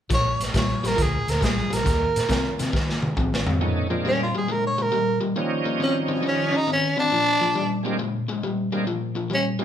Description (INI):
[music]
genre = electric blues shuffle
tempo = 137 BPM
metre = 4/4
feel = swing 67% on 8ths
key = unclear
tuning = A4 = 438 Hz
[part]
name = growling tenor saxophone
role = melody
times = 0.1-9.5 s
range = Db4 to Db5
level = -23 LUFS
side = right 1 dB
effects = none
[part]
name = overdriven electric guitar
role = riff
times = 0.1-9.6 s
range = Bb2 to Db4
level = -26 LUFS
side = left 3 dB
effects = none
[part]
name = vintage muted fingered electric bass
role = bass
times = 0.1-3.4 s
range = A1 to Eb3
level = -28 LUFS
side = equal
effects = none
[part]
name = crunchy breakbeat drum kit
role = drums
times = 0.1-3.6 s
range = hi-hat, kick drum, snare drum, toms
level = -24 LUFS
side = equal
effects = none
[part]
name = bright tonewheel organ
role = accompaniment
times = 3.6-9.6 s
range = F3 to Eb4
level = -27 LUFS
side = right 4 dB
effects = overdrive, chorus vibrato, slow rotary speaker
[sound]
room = moderate large studio reverb, RT60 0.9 s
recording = band playing live in one room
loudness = -21 LUFS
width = side -9 dB against mid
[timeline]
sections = 0.1-3.6 A section; 3.6-9.6 B section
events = drum fill 2.7-3.6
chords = 0.1 Bb; 1.9 Eb5; 3.6 Bb9; 5.4 Eb9; 7.1 Bb9